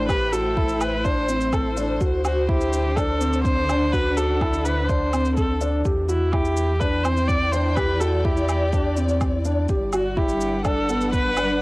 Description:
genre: piano and strings electronica.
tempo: 125 BPM.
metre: 4/4.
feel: straight.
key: unclear.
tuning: A4 = 441 Hz.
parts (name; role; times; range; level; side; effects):
warm viola; melody; 0.0-11.6 s; E4 to D5; -25 LUFS; equal; cassette tape.
dark studio string section; sustained chords; 0.0-11.6 s; D3 to G5; -29 LUFS; left 1 dB; sidechain pumping, cassette tape.
felt-muted upright piano; riff; 0.0-11.6 s; B3 to G4; -25 LUFS; equal; cassette tape.
warm sub bass; bass; 0.0-11.6 s; G1 to E2; -26 LUFS; equal; sidechain pumping.
electronic kick drum; drums; 0.1-11.2 s; none; -24 LUFS; equal; none.
shaker and woodblock; drums; 0.1-11.5 s; none; -32 LUFS; right 1 dB; none.
room: light reverb.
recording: home recording on cassette.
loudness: -19 LUFS.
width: side -21 dB against mid.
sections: 0.0-11.6 A section.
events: none.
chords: 0.0 Am7; 2.0 D7; 5.9 Em7; 9.7 Gmaj7.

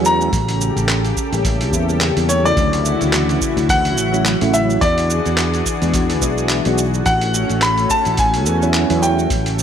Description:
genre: sunset chillout.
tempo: 107 BPM.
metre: 4/4.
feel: swing 57% on 16ths.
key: A major.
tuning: A4 = 443 Hz.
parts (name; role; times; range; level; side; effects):
soft electric-piano-like synth keys; accompaniment; 0.0-9.3 s; C#3 to G#4; -23 LUFS; moving between left 6 dB and right 7 dB; chorus, phaser, auto-pan, tape echo.
lush unison pad; sustained chords; 0.0-9.6 s; C#3 to A4; -22 LUFS; left 1 dB; chorus.
sustaining fretless electric bass; bass; 0.0-9.6 s; A1 to E2; -20 LUFS; equal; none.
bright concert grand piano; melody; 0.1-9.5 s; C#5 to B5; -20 LUFS; left 1 dB; tape echo.
dusty soul sampler-style drum kit; drums; 0.1-9.6 s; handclaps, hi-hat, shaker; -23 LUFS; right 2 dB; overdrive.
electronic kick drum; drums; 0.3-9.4 s; none; -22 LUFS; equal; none.
room: light reverb, digital ambience.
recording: none.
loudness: -14 LUFS.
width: side -8 dB against mid.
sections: 0.0-9.6 A section.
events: none.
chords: 0.3 A7b9; 2.6 Dmaj9; 4.8 E9; 7.1 A69.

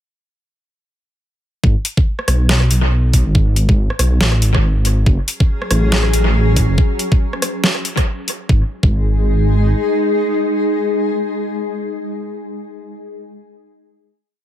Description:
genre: deep dubstep.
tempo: 140 BPM.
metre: 4/4.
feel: swing 58% on 16ths, half-time.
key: G# phrygian.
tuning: A4 = 440 Hz.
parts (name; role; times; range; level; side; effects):
dark detuned saw bass; bass; 1.6-9.7 s; F#1 to B1; -14 LUFS; equal; none.
electronic kick drum; drums; 1.6-8.9 s; none; -14 LUFS; equal; overdrive.
dubstep drum kit; drums; 1.8-8.4 s; hi-hat, rim click, snare drum; -19 LUFS; equal; overdrive, analog delay.
granular cloud pad; sustained chords; 5.6-12.1 s; F#3 to G#4; -20 LUFS; left 1 dB; built-in reverb.
room: light reverb.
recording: echo-heavy mix.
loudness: -13 LUFS.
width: side -11 dB against mid.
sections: 1.6-8.5 drop; 8.5-11.9 final chord.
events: drop 1.6-8.5.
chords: 1.6 G#m; 5.1 F#madd9; 8.5 G#5.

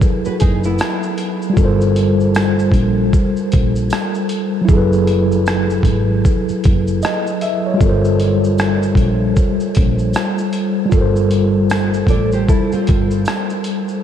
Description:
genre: lo-fi hip hop.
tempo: 77 BPM.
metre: 4/4.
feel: swing 61% on 16ths.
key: G dorian.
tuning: A4 = 439 Hz.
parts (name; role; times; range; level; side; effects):
mellow tine electric piano; accompaniment; 0.0-14.0 s; F#3 to E5; -17 LUFS; left 1 dB; medium stereo tremolo, low-pass filter.
boom bap sampler-style drum kit; drums; 0.0-14.0 s; hi-hat, kick drum, rim click, shaker; -18 LUFS; equal; none.
nylon-string guitar; second line; 0.3-1.5, 12.1-13.9 s; B3 to D5; -26 LUFS; right 2 dB; wide subtle chorus, low-pass filter, ping-pong delay.
woody fretless electric bass; bass; 0.3-13.2 s; F#1 to Bb1; -18 LUFS; equal; lush chorus.
tambourine; percussion; 0.8-13.5 s; none; -43 LUFS; right 7 dB; none.
room: moderate huge ambient reverb, RT60 8.0 s.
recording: dreamy mix soaked in reverb, cassette tape.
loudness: -13 LUFS.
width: side -10 dB against mid.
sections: 0.0-14.0 A section.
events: none.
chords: 0.0 F#m11; 1.6 Gm11; 4.7 F#m11; 7.8 Gm11.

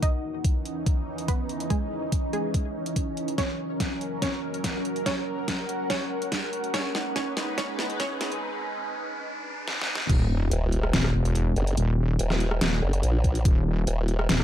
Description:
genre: heavy wobble dubstep.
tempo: 143 BPM.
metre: 4/4.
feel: half-time.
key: unclear.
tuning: A4 = 441 Hz.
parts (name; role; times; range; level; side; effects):
wide unison pluck; melody; 0.0-8.4 s; Ab3 to Eb5; -33 LUFS; right 2 dB; vintage 12-bit sampler grit, ping-pong delay.
lush unison pad; sustained chords; 0.0-10.1 s; Fb3 to Cb5; -35 LUFS; equal; chorus, phaser, sidechain pumping.
dubstep drum kit; drums; 0.0-14.4 s; crash cymbal, hi-hat, rim click, snare drum; -29 LUFS; equal; overdrive.
electronic kick drum; drums; 0.0-10.2, 13.2-13.5 s; none; -25 LUFS; equal; overdrive.
warbly tape-like pad; texture; 0.0-8.4 s; Fb3 to Ab5; -34 LUFS; equal; chorus, built-in reverb, sidechain pumping.
riser and sub drop; sound effects; 5.7-11.8 s; none; -35 LUFS; equal; none.
wobble bass; bass; 10.1-14.4 s; Eb1 to Fb1; -23 LUFS; equal; chorus, overdrive.
formant-sweep wobble bass; bass; 10.5-14.3 s; Eb1 to Bb1; -24 LUFS; equal; chorus, overdrive.
room: digital ambience.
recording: dark, warm production, high-pass filter.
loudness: -24 LUFS.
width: side -11 dB against mid.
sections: 0.0-10.1 A section; 10.1-14.4 B section.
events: build-up 0.0-10.1; filter sweep on analog synth pad 0.0-10.1; filter sweep 0.0-10.1; drum fill 3.4-8.4, 9.7-10.1; riser 5.7-10.1; break 8.4-10.1; drop 10.1-14.4; impact 10.1-11.8.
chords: 0.0 Dbmadd9; 3.4 Gb; 6.7 Abm; 10.1 N.C..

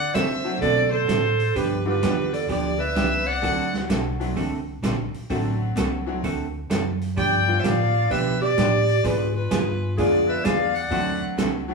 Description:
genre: country, western swing.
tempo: 128 BPM.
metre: 4/4.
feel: swing 66% on 8ths.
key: D mixolydian.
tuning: A4 = 442 Hz.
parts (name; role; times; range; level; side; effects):
clear fiddle; melody; 0.0-3.7, 7.2-11.2 s; B4 to G5; -25 LUFS; left 3 dB; none.
breathy clarinet; second line; 0.0-3.7, 7.2-11.2 s; E#4 to D5; -26 LUFS; right 4 dB; none.
upright bass; bass; 0.0-11.7 s; A1 to D3; -27 LUFS; equal; none.
archtop guitar, miked and amplified; accompaniment; 0.1-11.5 s; D3 to A4; -27 LUFS; right 3 dB; none.
vintage drum kit; drums; 0.1-11.5 s; hi-hat, kick drum, snare drum; -28 LUFS; right 2 dB; none.
tack piano; accompaniment; 0.4-11.7 s; D3 to C5; -29 LUFS; left 1 dB; none.
room: wet stone room reverb, RT60 1.0 s.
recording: band playing live in one room, small room reverb.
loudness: -20 LUFS.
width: side -3 dB against mid.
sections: 0.0-11.7 A section.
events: none.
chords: 0.0 D7; 1.6 G7; 3.4 D7; 7.2 G7; 9.0 G#dim7; 10.9 D7.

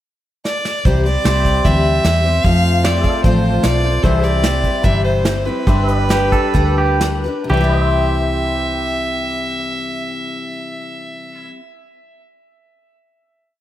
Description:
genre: honky-tonk and classic country.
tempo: 121-151 BPM.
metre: 4/4.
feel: straight.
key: C major.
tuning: A4 = 439 Hz.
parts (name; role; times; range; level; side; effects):
clear fiddle; melody; 0.5-11.5 s; B4 to F5; -21 LUFS; right 1 dB; analog delay.
soft brush drum kit; drums; 0.5-7.1 s; hi-hat, kick drum, snare drum; -19 LUFS; equal; none.
picked steel-string acoustic guitar; accompaniment; 0.9-11.7 s; C3 to C5; -20 LUFS; left 3 dB; none.
vintage muted fingered electric bass; bass; 0.9-11.5 s; G1 to F2; -18 LUFS; equal; none.
pedal steel guitar; sustained chords; 1.3-11.5 s; G4 to F5; -25 LUFS; right 1 dB; none.
twangy electric guitar; second line; 6.1-11.5 s; G4 to A4; -23 LUFS; right 4 dB; tape echo.
room: moderate plate reverb, RT60 1.8 s, small room ambience.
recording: dreamy mix soaked in reverb.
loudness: -14 LUFS.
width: side -13 dB against mid.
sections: 0.0-0.9 pickup bar; 0.9-7.5 verse; 7.5-11.5 final chord.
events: drum fill 0.5-0.9; slowing down 4.0-7.5.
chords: 0.0 N.C.; 0.9 C; 2.4 F; 4.0 C; 5.7 G; 7.5 C.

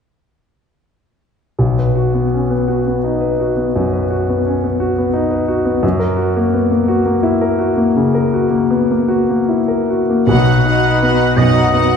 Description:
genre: classical, romantic movement for piano and orchestra.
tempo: 47-59 BPM (dotted quarters).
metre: 12/8.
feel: rubato.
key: B major.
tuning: A4 = 440 Hz.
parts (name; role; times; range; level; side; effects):
clear concert grand piano; melody; 1.6-12.0 s; B1 to B4; -13 LUFS; left 1 dB; none.
clear symphonic violin section; melody; 10.3-12.0 s; F#5; -20 LUFS; left 3 dB; none.
warm oboe; second line; 10.3-12.0 s; B4 to D#5; -18 LUFS; equal; none.
warm studio viola section; accompaniment; 10.3-12.0 s; D#4 to F#4; -19 LUFS; right 4 dB; none.
rich studio cello section; bass; 10.3-12.0 s; B2; -17 LUFS; right 3 dB; none.
room: wet scoring stage reverb, RT60 1.9 s.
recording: heard from further back in the room, nothing above 10.3 kHz.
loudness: -13 LUFS.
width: side -6 dB against mid.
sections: 1.6-10.3 A section; 10.3-12.0 B section.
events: none.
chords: 1.6 B; 5.8 F#7; 10.3 B.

